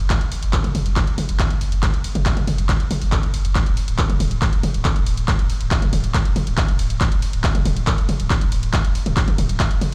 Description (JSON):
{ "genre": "driving peak-time techno", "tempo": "139 BPM", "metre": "4/4", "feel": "straight", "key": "unclear", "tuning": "A4 = 440 Hz", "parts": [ { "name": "warm sub bass", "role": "bass", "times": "0.0-9.9 s", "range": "D1 to F#1", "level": "-25 LUFS", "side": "equal", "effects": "overdrive, sidechain pumping, low-pass filter" }, { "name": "electronic kick drum", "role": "drums", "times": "0.1-9.7 s", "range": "none", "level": "-22 LUFS", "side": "equal", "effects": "none" }, { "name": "punchy analog drum machine", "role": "drums", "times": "0.1-9.9 s", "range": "handclaps, hi-hat, ride cymbal, toms", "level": "-26 LUFS", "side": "equal", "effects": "sidechain pumping on hats, sidechain pumping on toms, sidechain pumping on cymbals" } ], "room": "little or no reverb", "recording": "played on a big sound system in a bare room, large studio reverb", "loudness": "-20 LUFS", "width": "mono", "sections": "0.0-9.9 A section", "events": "none", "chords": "none" }